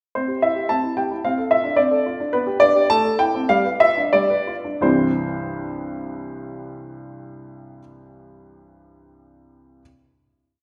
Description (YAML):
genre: classical-period piano sonatina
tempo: 85-113 BPM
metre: 2/4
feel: rubato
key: C major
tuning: A4 = 440 Hz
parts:
  - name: warm baby grand piano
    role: solo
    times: 0.2-9.8 s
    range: C2 to A5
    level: -20 LUFS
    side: equal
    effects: none
room: wet recital hall reverb, RT60 1.8 s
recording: recorded in a church or concert hall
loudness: -20 LUFS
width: mono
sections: 0.1-4.8 A section; 4.8-7.6 final chord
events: slowing down 1.8-4.8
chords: 0.1 C; 1.2 Dm7/C; 2.3 G/B; 2.9 Am; 3.5 G7; 4.8 C